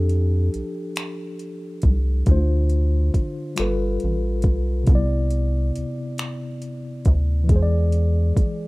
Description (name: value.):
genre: slow six-eight R&B.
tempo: 46 BPM (dotted quarters).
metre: 6/8.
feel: straight.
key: unclear.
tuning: A4 = 443 Hz.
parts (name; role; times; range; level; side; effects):
mellow tine electric piano; accompaniment; 0.0-8.7 s; C3 to D5; -26 LUFS; left 1 dB; medium stereo tremolo.
rubbery square bass; bass; 0.0-8.5 s; G1 to F2; -20 LUFS; equal; none.
smooth R&B drum kit; drums; 0.1-8.6 s; finger snaps, hi-hat, kick drum; -19 LUFS; equal; none.
room: digital ambience.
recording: rough home demo mix.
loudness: -19 LUFS.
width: side -22 dB against mid.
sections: 0.0-8.7 A section.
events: none.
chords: 0.0 F69; 2.3 Dm7; 3.6 G9; 4.9 Cmaj9; 7.5 E7.